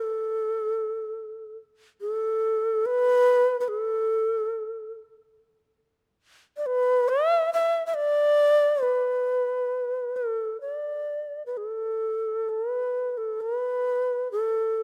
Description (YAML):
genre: japanese traditional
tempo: 61-73 BPM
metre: 4/4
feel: rubato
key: unclear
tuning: A4 = 440 Hz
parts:
  - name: reedy long shakuhachi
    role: solo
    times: 0.0-14.8 s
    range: A4 to E5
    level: -26 LUFS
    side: equal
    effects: none
room: light reverb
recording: close, detailed microphones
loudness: -26 LUFS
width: mono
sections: 0.0-12.5 A section; 12.5-14.8 B section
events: none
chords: none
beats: 0.32 1.19 | 2.03 2.85 3.68 4.52 | 5.36 6.21 7.06 7.93 | 8.80 9.69 10.59 11.54 | 12.48 13.39 14.31